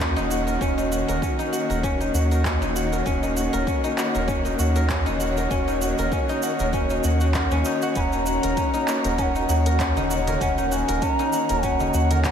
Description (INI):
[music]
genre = organic downtempo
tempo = 98 BPM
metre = 4/4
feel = swing 55% on 16ths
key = Eb minor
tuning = A4 = 440 Hz
[part]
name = dark studio string section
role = sustained chords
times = 0.0-12.3 s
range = Eb3 to Eb5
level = -28 LUFS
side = left 1 dB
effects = sidechain pumping
[part]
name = guzheng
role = arpeggios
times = 0.0-12.3 s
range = Db4 to Bb4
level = -25 LUFS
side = left 1 dB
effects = diffuse ambient delay
[part]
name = round analog bass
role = bass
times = 0.0-12.3 s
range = Eb1 to Eb2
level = -24 LUFS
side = equal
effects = sidechain pumping
[part]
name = electronic kick drum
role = drums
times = 0.0-12.3 s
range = none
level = -28 LUFS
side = equal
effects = none
[part]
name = organic electronic drum kit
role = drums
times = 0.0-12.3 s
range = handclaps, hi-hat, shaker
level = -31 LUFS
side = right 1 dB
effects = overdrive
[part]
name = mellow bansuri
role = melody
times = 8.0-12.3 s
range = Gb5 to Cb6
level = -26 LUFS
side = right 1 dB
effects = ping-pong delay
[part]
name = darbuka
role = percussion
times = 8.7-12.2 s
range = none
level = -36 LUFS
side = right 2 dB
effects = none
[sound]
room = wet huge ambient reverb, RT60 8.1 s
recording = dreamy mix soaked in reverb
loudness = -20 LUFS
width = side -8 dB against mid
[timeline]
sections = 0.0-12.3 A section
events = none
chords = 0.0 Ebm7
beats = 0.00 | 0.61 1.22 1.84 2.45 | 3.06 3.67 4.29 4.90 | 5.51 6.12 6.73 7.35 | 7.96 8.57 9.18 9.79 | 10.41 11.02 11.63 12.24